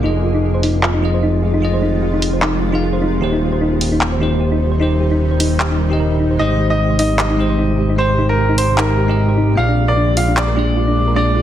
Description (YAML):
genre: future bass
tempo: 151 BPM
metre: 4/4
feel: swing 56% on 16ths, half-time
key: F dorian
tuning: A4 = 440 Hz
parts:
  - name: bell-like tine electric piano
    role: accompaniment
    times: 0.0-11.4 s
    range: Eb3 to F5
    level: -20 LUFS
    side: right 1 dB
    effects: fast stereo tremolo, dub echo
  - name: shimmering ambient pad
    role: sustained chords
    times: 0.0-11.4 s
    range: Bb2 to G4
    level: -25 LUFS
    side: left 1 dB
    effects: chorus, built-in reverb
  - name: thumb-piano-like synth pluck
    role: arpeggios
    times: 0.0-11.4 s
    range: D4 to C5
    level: -22 LUFS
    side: equal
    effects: chorus, dub echo
  - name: fat analog bass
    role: bass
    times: 0.0-11.4 s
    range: Eb1 to Bb1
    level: -17 LUFS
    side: equal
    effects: none
  - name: big-room dance drum kit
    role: drums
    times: 0.6-10.5 s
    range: handclaps, hi-hat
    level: -21 LUFS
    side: equal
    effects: low-pass filter on snare, low-pass filter on hats
  - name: clear baby grand piano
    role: melody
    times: 6.4-11.4 s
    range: Bb4 to F5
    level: -19 LUFS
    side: right 1 dB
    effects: ping-pong delay
room: light reverb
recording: heavily compressed radio sound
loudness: -13 LUFS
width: side -11 dB against mid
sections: 0.0-11.4 A section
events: none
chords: 0.0 Fm7; 3.2 Eb6; 6.4 Abmaj7; 9.6 Bb7